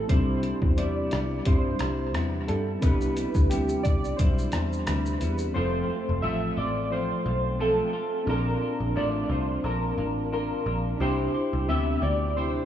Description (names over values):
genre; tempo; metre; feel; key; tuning
indie pop, bedroom pop; 88 BPM; 4/4; swing 55% on 16ths; C major; A4 = 440 Hz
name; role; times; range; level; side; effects
warbly lo-fi synth keys; melody; 0.0-12.7 s; G4 to E5; -30 LUFS; equal; ensemble chorus, dub echo
semi-hollow electric guitar; accompaniment; 0.0-12.7 s; Bb2 to G4; -32 LUFS; left 2 dB; wide subtle chorus, warbly pitch drift, dub echo
tine electric piano; accompaniment; 0.0-12.7 s; A3 to A5; -32 LUFS; right 1 dB; medium stereo tremolo, cassette tape, dub echo
picked electric bass; bass; 0.0-12.6 s; F1 to G2; -29 LUFS; equal; none
lo-fi sampler-style drum kit; drums; 0.1-5.5 s; hi-hat, kick drum, rim click, shaker; -25 LUFS; equal; none
room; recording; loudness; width
light reverb; echo-heavy mix, cassette tape, small room ambience; -24 LUFS; side -10 dB against mid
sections
0.0-5.5 A section; 5.5-12.7 B section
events
none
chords
0.1 Cmaj7; 5.5 F; 8.3 Bbmaj7; 11.0 Cmaj7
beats
| 0.10 0.78 1.46 2.14 | 2.83 3.51 4.19 4.87 | 5.55 6.23 6.91 7.59 | 8.27 8.95 9.63 10.31 | 11.00 11.68 12.36